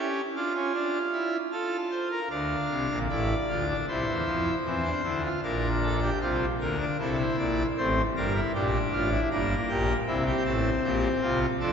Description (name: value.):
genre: classical, baroque-style 4-part fugue for pipe organ.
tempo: 77 BPM.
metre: 4/4.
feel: straight.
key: unclear.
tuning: A4 = 439 Hz.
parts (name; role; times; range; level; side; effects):
pipe organ, full organ; solo; 0.0-11.7 s; G1 to F5; -25 LUFS; equal; none.
room: wet cathedral reverb, RT60 4.7 s.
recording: recorded in a church or concert hall, nothing above 7.7 kHz.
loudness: -25 LUFS.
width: side -7 dB against mid.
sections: 0.0-2.3 A section; 2.3-11.7 B section.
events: none.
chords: 0.0 A7/C# (rootless); 0.8 Dm; 3.9 C; 5.4 Bb; 7.0 Am; 8.6 Gm; 10.1 C7.